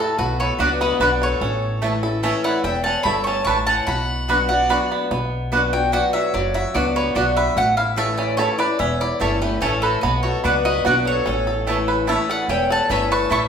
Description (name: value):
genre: bluegrass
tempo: 146 BPM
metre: 3/4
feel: straight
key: B minor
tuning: A4 = 440 Hz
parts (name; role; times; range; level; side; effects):
- mandolin; melody; 0.0-13.5 s; A4 to C#6; -23 LUFS; left 1 dB; none
- clear fiddle; second line; 0.0-4.9, 9.2-13.5 s; F#4 to A5; -30 LUFS; left 3 dB; none
- picked acoustic archtop guitar; accompaniment; 0.0-13.5 s; E2 to F#4; -24 LUFS; left 3 dB; none
- bluegrass banjo; arpeggios; 0.0-13.5 s; F#3 to B4; -24 LUFS; right 4 dB; none
- upright bass; bass; 0.2-13.5 s; E1 to C#2; -26 LUFS; equal; none
- mandolin; stabs; 0.6-13.4 s; A3 to A5; -24 LUFS; right 3 dB; none
room: wet large studio reverb, RT60 0.9 s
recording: band playing live in one room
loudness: -17 LUFS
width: side -7 dB against mid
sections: 0.0-5.1 A section; 5.1-13.5 A section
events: none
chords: 0.2 Bm; 1.4 A; 3.9 Bm; 7.6 A; 10.0 Bm; 11.3 A